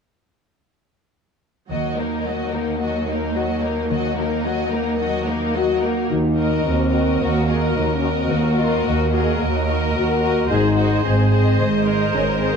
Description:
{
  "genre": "cinematic, heroic adventure film score",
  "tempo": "109 BPM",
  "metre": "4/4",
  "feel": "straight",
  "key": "Eb dorian",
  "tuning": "A4 = 440 Hz",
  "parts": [
    { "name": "warm symphonic violin section", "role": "melody", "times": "1.7-12.6 s", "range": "Bb4 to Eb5", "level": "-28 LUFS", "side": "left 3 dB", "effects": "none" },
    { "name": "warm symphonic violin section", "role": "second line", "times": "1.7-12.6 s", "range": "Eb4 to C5", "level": "-28 LUFS", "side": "left 2 dB", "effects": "none" },
    { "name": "rich symphonic viola section", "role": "accompaniment", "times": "1.7-12.6 s", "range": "Gb3 to C5", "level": "-26 LUFS", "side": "right 2 dB", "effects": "none" },
    { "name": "concert harp", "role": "arpeggios", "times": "1.7-12.6 s", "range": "Ab2 to C5", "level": "-27 LUFS", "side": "left 10 dB", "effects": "none" },
    { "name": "clear symphonic double bass section", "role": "bass", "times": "1.7-2.2, 6.1-12.6 s", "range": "Ab1 to Eb2", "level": "-23 LUFS", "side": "right 4 dB", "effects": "none" },
    { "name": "dark symphonic cello section", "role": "bass", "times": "1.7-12.6 s", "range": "Eb2 to Ab2", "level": "-24 LUFS", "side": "right 3 dB", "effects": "none" },
    { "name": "dark French horn section", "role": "sustained chords", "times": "5.6-12.6 s", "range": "Ab3 to Gb4", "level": "-22 LUFS", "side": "left 3 dB", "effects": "none" }
  ],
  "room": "wet recital hall reverb, RT60 1.3 s",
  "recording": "dark, warm production",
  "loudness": "-17 LUFS",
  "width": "side -6 dB against mid",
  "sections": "1.7-6.1 A section; 6.1-12.6 B section",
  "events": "none",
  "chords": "1.7 Ebm; 10.5 Ab",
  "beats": "| 1.71 2.26 2.81 3.36 | 3.91 4.45 5.00 5.55 | 6.11 6.66 7.21 7.76 | 8.31 8.86 9.41 9.95 | 10.50 11.05 11.60 12.14"
}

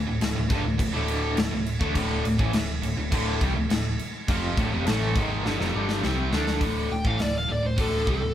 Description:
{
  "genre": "hard rock",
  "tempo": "103 BPM",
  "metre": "4/4",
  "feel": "straight",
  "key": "D minor",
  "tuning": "A4 = 440 Hz",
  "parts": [
    { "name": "crunchy overdriven guitar", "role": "riff", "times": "0.0-6.6 s", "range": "D2 to D4", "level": "-33 LUFS", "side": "equal", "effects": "tremolo" },
    { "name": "overdriven semi-hollow guitar", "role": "riff", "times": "0.0-8.3 s", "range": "D2 to D4", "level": "-30 LUFS", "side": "left 2 dB", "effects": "none" },
    { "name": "tight distorted guitar", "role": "riff", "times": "0.0-8.3 s", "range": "D2 to D4", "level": "-31 LUFS", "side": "right 4 dB", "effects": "distortion" },
    { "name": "hollow-body short-scale picked electric bass", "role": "bass", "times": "0.0-8.3 s", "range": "D1 to D2", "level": "-29 LUFS", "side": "equal", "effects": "none" },
    { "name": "big rock drum kit", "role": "drums", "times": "0.2-8.2 s", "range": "crash cymbal, hi-hat, kick drum, snare drum", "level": "-28 LUFS", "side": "equal", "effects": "none" },
    { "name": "bluesy overdriven lead guitar", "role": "melody", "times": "6.9-8.3 s", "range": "A4 to G5", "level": "-28 LUFS", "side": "equal", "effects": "distortion" }
  ],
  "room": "moderate stone room reverb, RT60 1.2 s",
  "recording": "band playing live in one room",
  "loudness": "-23 LUFS",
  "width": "side -11 dB against mid",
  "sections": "0.0-6.6 A section; 6.6-8.3 B section",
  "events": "drum fill 5.4-6.6; lead electric guitar solo 6.6-8.3",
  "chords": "0.0 Dm; 6.6 D5",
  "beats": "0.21 0.79 1.37 | 1.95 2.54 3.12 3.70 | 4.28 4.86 5.44 6.03 | 6.61 7.19 7.78"
}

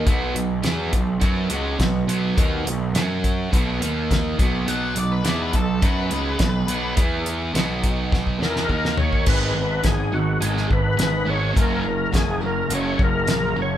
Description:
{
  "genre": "classic rock",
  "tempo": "105 BPM",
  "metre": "4/4",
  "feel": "straight",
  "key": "B major",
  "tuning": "A4 = 440 Hz",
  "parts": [
    { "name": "picked plugged-in swing-style acoustic guitar", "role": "accompaniment", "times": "0.0-13.8 s", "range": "G#2 to D#5", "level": "-33 LUFS", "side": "left 2 dB", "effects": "none" },
    { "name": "sludgy distorted guitar", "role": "riff", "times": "0.0-13.8 s", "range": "F#2 to F#4", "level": "-24 LUFS", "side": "right 3 dB", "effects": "overdrive" },
    { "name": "fuzz picked electric bass", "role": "bass", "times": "0.0-13.8 s", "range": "F#1 to F#2", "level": "-26 LUFS", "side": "equal", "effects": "overdrive" },
    { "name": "damped 70s drum kit", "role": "drums", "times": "0.1-13.4 s", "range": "crash cymbal, hi-hat, kick drum, snare drum, toms", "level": "-22 LUFS", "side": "equal", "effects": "none" },
    { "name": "octave-fuzz lead guitar", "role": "second line", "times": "4.7-6.9 s", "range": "A4 to F#5", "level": "-28 LUFS", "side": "left 3 dB", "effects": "distortion" },
    { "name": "overdriven tonewheel organ", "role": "melody", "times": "8.4-13.8 s", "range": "F#4 to C#5", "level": "-24 LUFS", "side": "left 2 dB", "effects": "slow rotary speaker, chorus vibrato" }
  ],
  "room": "moderate large studio reverb, RT60 1.0 s",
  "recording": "band playing live in one room",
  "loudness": "-19 LUFS",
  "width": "side -11 dB against mid",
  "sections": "0.0-9.3 A section; 9.3-13.8 B section",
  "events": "drum fill 8.1-9.3",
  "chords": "0.1 B; 3.0 F#5; 3.5 B; 3.8 D#5; 4.4 B; 7.0 E5; 7.5 B; 8.7 D#5; 9.3 G#m; 11.6 F#",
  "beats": "| 0.07 0.65 1.22 1.80 | 2.38 2.95 3.53 4.10 | 4.68 5.25 5.82 6.40 | 6.97 7.55 8.12 8.69 | 9.27 9.84 10.41 10.98 | 11.56 12.13 12.70 13.28"
}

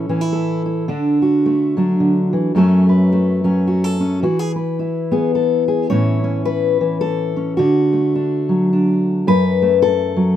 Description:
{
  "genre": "folk, solo fingerstyle acoustic guitar",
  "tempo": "107 BPM",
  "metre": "3/4",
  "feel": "swing 59% on 8ths",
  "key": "A major",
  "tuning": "A4 = 440 Hz",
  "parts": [
    { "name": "fingerpicked steel-string acoustic guitar", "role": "solo", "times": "0.0-10.4 s", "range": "F#2 to C#5", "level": "-14 LUFS", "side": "left 1 dB", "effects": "none" }
  ],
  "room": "light reverb",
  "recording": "minimal, uncompressed stereo recording",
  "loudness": "-14 LUFS",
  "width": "side -11 dB against mid",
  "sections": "0.0-5.9 A section; 5.9-10.4 B section",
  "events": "none",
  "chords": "0.0 A; 0.9 D; 2.5 F#m; 4.2 E; 5.9 Aadd9; 7.6 D; 9.3 F#m",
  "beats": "0.30 | 0.87 1.43 1.99 | 2.55 3.11 3.67 | 4.23 4.79 5.35 | 5.91 6.47 7.03 | 7.59 8.15 8.71 | 9.27 9.82"
}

